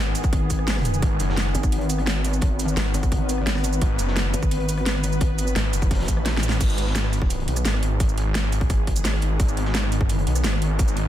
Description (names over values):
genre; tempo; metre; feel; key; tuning
dark technical drum and bass; 172 BPM; 4/4; straight; G# minor; A4 = 440 Hz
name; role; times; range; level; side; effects
swarming drone; sustained chords; 0.0-11.1 s; D#3 to B4; -29 LUFS; left 1 dB; built-in reverb, sidechain pumping
wide detuned saw bass; bass; 0.0-11.1 s; F#1 to B1; -23 LUFS; equal; chorus, sidechain pumping
dubstep drum kit; drums; 0.1-11.0 s; crash cymbal, hi-hat, rim click, shaker, snare drum; -28 LUFS; right 1 dB; studio reverb
crunchy breakbeat drum kit; drums; 0.2-11.0 s; hi-hat, snare drum; -38 LUFS; equal; none
electronic kick drum; drums; 0.2-10.9 s; none; -22 LUFS; equal; overdrive, studio reverb
pulsing pluck wobble bass; bass; 0.3-5.5 s; G#1; -24 LUFS; equal; chorus
room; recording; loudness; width
digital ambience; dense, heavily limited modern master; -20 LUFS; side -12 dB against mid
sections
0.0-6.6 A section; 6.6-11.1 A section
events
drop 0.0-6.6, 6.6-11.1; drum fill 6.3-6.6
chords
0.0 G#m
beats
0.33 0.68 | 1.02 1.37 1.72 2.07 | 2.42 2.77 3.12 3.47 | 3.81 4.16 4.51 4.86 | 5.21 5.56 5.91 6.26 | 6.61 6.96 7.30 7.65 | 8.00 8.35 8.70 9.05 | 9.40 9.75 10.09 10.44 | 10.79